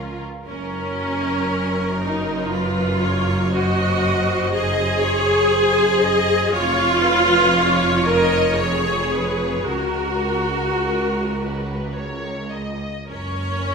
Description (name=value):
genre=classical, slow romantic movement for string orchestra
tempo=52-61 BPM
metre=3/4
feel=rubato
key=F# major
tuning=A4 = 442 Hz
part: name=clear symphonic violin section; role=second line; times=0.0-13.7 s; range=E#4 to D#5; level=-26 LUFS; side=left 2 dB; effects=none
part: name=rich symphonic viola section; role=accompaniment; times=0.0-13.7 s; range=C#4 to A#4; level=-20 LUFS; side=equal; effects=none
part: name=rich symphonic double bass section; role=bass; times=0.0-13.7 s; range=E#1 to C#2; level=-27 LUFS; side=right 1 dB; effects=none
part: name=warm symphonic violin section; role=melody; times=0.5-13.7 s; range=A#4 to D#5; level=-31 LUFS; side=left 2 dB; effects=none
part: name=rich symphonic cello section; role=bass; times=0.5-13.7 s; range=C#2 to F#2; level=-26 LUFS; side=right 2 dB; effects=none
room=wet recital hall reverb, RT60 1.5 s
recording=minimal, uncompressed stereo recording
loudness=-17 LUFS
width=side -5 dB against mid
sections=0.5-13.7 A section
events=none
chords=0.5 F#; 3.5 G#7/F#; 6.5 C#/E#; 9.7 F#/C#; 11.9 A#madd11/C#; 13.1 F#